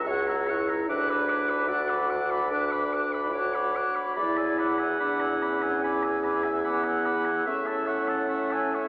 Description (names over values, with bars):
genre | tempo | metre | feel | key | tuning
classical, slow romantic movement for wind quintet | 73 BPM | 4/4 | rubato | unclear | A4 = 439 Hz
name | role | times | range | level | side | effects
mellow hollow silver concert flute | melody | 0.0-8.9 s | C#6 to F#6 | -30 LUFS | left 1 dB | none
clear oboe | second line | 0.0-8.9 s | E5 to D6 | -33 LUFS | left 1 dB | none
mellow clarinet | accompaniment | 0.0-8.9 s | A4 to G#5 | -30 LUFS | right 1 dB | none
warm French horn | accompaniment | 0.0-8.9 s | B3 to F#4 | -33 LUFS | equal | none
mellow bassoon | bass | 0.0-8.9 s | C#2 to A2 | -29 LUFS | equal | none
room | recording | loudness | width
wet cathedral reverb, RT60 4.5 s | recorded in a church or concert hall, small speaker sound | -24 LUFS | side -21 dB against mid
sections
0.0-8.9 A section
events
none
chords
0.0 F#7/C#; 0.9 Bm/D; 4.2 E7; 7.5 A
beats
0.07 | 0.89 1.69 2.51 3.33 | 4.16 5.00 5.83 6.64 | 7.46 8.30